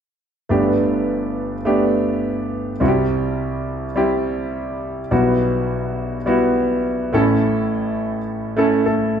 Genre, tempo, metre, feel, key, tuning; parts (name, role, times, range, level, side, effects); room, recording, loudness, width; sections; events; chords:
pop; 104 BPM; 4/4; straight; G major; A4 = 440 Hz
clear concert grand piano; accompaniment; 0.5-9.2 s; G1 to A4; -17 LUFS; equal
wet large studio reverb, RT60 1.1 s; band playing live in one room; -17 LUFS; side -8 dB against mid
0.5-9.2 A section
0.5 Gadd9; 2.8 C; 5.1 Emadd9/B; 7.1 A